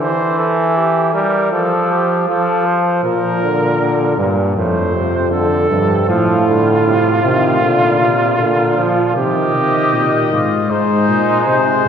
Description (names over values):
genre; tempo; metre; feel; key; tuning
classical, imitative canzona for brass ensemble; 78 BPM; 4/4; straight; Bb major; A4 = 440 Hz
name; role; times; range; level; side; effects
mellow trumpet; second line; 0.0-11.9 s; Eb4 to C5; -18 LUFS; right 1 dB; none
brilliant trombone; accompaniment; 0.0-11.9 s; A2 to Ab3; -17 LUFS; equal; none
warm bass trombone; bass; 3.0-11.9 s; F2 to C3; -16 LUFS; equal; none
warm trumpet; melody; 9.2-11.9 s; C5 to Eb5; -18 LUFS; left 8 dB; none
room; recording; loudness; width
wet concert hall reverb, RT60 2.4 s; recorded in a church or concert hall; -12 LUFS; side -7 dB against mid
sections
0.0-9.2 A section; 9.2-11.9 B section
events
none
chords
0.0 C/E; 1.5 F; 3.0 Bb; 4.6 F; 6.1 F/A; 7.6 Bb; 9.2 Cm; 10.7 Ab